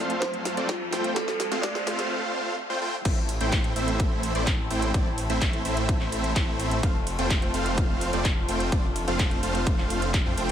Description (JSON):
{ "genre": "EDM, festival progressive house", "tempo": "127 BPM", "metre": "4/4", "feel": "straight", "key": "A minor", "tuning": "A4 = 440 Hz", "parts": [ { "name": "bell-like FM electric piano", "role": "melody", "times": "0.0-2.1 s", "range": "F4 to D5", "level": "-33 LUFS", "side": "right 2 dB", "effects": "chorus, ping-pong delay" }, { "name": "muted chamber string section", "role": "sustained chords", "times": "0.0-10.5 s", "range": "F2 to A4", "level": "-36 LUFS", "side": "left 2 dB", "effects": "sidechain pumping" }, { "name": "supersaw chords", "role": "riff", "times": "0.0-10.5 s", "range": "A3 to G5", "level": "-28 LUFS", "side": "right 1 dB", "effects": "vintage 12-bit sampler grit, sidechain pumping, low-pass filter, ping-pong delay" }, { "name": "riser", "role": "sound effects", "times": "0.0-2.1 s", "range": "none", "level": "-36 LUFS", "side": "equal", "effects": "none" }, { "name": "house drum kit", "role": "drums", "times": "0.1-10.5 s", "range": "crash cymbal, handclaps, hi-hat, ride cymbal, snare drum", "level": "-33 LUFS", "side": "equal", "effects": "high-pass filter on snare, high-pass filter on hats, high-pass filter on cymbals" }, { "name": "electronic kick drum", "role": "drums", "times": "0.2-10.2 s", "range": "none", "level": "-26 LUFS", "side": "equal", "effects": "high-pass filter on kick, high-pass filter on room" }, { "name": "detuned saw bass", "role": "bass", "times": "3.1-10.5 s", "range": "F1 to F2", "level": "-30 LUFS", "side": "equal", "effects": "sidechain pumping" } ], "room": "light reverb, digital ambience", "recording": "high-pass filter", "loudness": "-23 LUFS", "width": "side -10 dB against mid", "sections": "0.0-3.1 A section; 3.1-10.5 B section", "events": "build-up 0.0-3.1; drum fill 0.0-2.1; riser 0.0-2.1; drop 3.1-10.5", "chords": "0.0 F; 3.1 Am; 6.8 F", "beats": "0.22 0.69 | 1.16 1.64 2.11 2.58 | 3.05 3.52 4.00 4.47 | 4.94 5.42 5.89 6.36 | 6.83 7.30 7.78 8.25 | 8.72 9.19 9.67 10.14" }